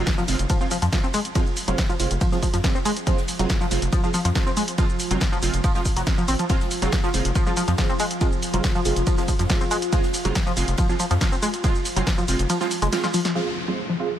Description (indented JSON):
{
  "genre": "driving peak-time techno",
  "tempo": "140 BPM",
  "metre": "4/4",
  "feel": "straight",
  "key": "F minor",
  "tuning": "A4 = 444 Hz",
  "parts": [
    { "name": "rave stab", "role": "stabs", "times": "0.0-14.1 s", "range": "Ab3 to F4", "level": "-29 LUFS", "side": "right 6 dB", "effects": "chorus, built-in reverb, cassette tape, sidechain pumping, tape echo" },
    { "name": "gritty driven synth bass", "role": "bass", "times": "0.0-12.9 s", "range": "F1 to F2", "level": "-23 LUFS", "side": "equal", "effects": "sidechain pumping" },
    { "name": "deep dark ambient pad", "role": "drone", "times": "1.5-14.2 s", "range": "F3 to F4", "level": "-32 LUFS", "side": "left 1 dB", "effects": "chorus, built-in reverb, sidechain pumping" },
    { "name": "impact and downlifter", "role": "sound effects", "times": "0.0-1.4, 13.4-14.2 s", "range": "none", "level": "-34 LUFS", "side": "equal", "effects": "none" },
    { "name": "electronic kick drum", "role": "drums", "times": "0.1-12.2 s", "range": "none", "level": "-23 LUFS", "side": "equal", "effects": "none" },
    { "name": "open jazz drum kit", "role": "drums", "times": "0.1-14.1 s", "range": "ride cymbal, snare drum", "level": "-39 LUFS", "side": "right 2 dB", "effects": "none" },
    { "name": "punchy analog drum machine", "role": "drums", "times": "0.1-13.3 s", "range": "hi-hat, ride cymbal, shaker, snare drum", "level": "-28 LUFS", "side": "equal", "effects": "none" },
    { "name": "tight sequenced synth", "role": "riff", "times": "0.2-13.9 s", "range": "F3 to F4", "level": "-26 LUFS", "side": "left 1 dB", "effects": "chorus, tube saturation, sidechain pumping, ping-pong delay" }
  ],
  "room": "digital ambience",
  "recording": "none",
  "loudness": "-20 LUFS",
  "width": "side -11 dB against mid",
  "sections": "0.0-13.4 A section",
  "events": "drop 0.0-13.4; impact 0.0-1.4; kick drops out 12.5-13.4; drum fill 12.9-13.4",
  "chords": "0.0 Fm"
}